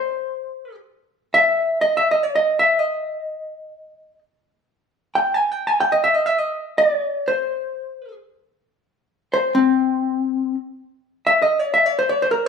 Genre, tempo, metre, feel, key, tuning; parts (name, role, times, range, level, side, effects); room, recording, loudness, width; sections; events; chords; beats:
arabic; free time; C maqam saba; A4 = 440 Hz
vintage hollow-body jazz guitar; solo; 0.0-12.5 s; C4 to Ab5; -17 LUFS; left 1 dB
moderate large studio reverb, RT60 1.0 s; band playing live in one room; -17 LUFS; side -6 dB against mid
0.0-10.8 A section; 10.8-12.5 A section
free time